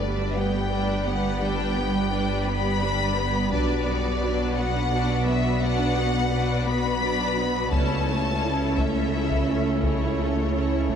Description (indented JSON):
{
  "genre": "cinematic, hybrid orchestral and electronic film score",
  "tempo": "57 BPM (dotted quarters)",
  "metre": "6/8",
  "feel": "straight",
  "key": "B minor",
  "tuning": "A4 = 439 Hz",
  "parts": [
    { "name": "warm symphonic violin section", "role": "melody", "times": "0.0-11.0 s", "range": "C#5 to B5", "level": "-29 LUFS", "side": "left 4 dB", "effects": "none" },
    { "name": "rich symphonic violin section", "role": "second line", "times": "0.0-11.0 s", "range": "F#4 to D5", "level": "-33 LUFS", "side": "left 4 dB", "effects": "none" },
    { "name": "rich symphonic viola section", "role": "accompaniment", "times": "0.0-11.0 s", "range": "F#3 to E4", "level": "-31 LUFS", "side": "right 1 dB", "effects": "none" },
    { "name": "warbly tape-like pad", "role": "sustained chords", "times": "0.0-11.0 s", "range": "G3 to E5", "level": "-29 LUFS", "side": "right 1 dB", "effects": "chorus, built-in reverb" },
    { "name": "harp-like synth pluck", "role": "arpeggios", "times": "0.0-11.0 s", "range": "G3 to B4", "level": "-34 LUFS", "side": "right 1 dB", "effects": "none" },
    { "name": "rich symphonic cello section", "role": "bass", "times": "0.0-11.0 s", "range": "G2 to C#3", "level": "-30 LUFS", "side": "right 2 dB", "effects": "none" },
    { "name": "rich symphonic double bass section", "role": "bass", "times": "0.0-11.0 s", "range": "G1 to C#2", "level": "-31 LUFS", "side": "right 3 dB", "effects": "none" },
    { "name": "saturated sub bass", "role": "bass", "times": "0.0-11.0 s", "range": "G1 to C#2", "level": "-31 LUFS", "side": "left 1 dB", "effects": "none" },
    { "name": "solo taiko drums", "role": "drums", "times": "3.5-11.0 s", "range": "none", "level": "-30 LUFS", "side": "left 1 dB", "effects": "none" }
  ],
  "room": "wet concert hall reverb, RT60 2.6 s",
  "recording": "none",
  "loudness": "-22 LUFS",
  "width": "side -8 dB against mid",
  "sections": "0.0-11.0 A section",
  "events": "none",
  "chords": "0.0 G; 3.5 Bm; 7.7 A/C#"
}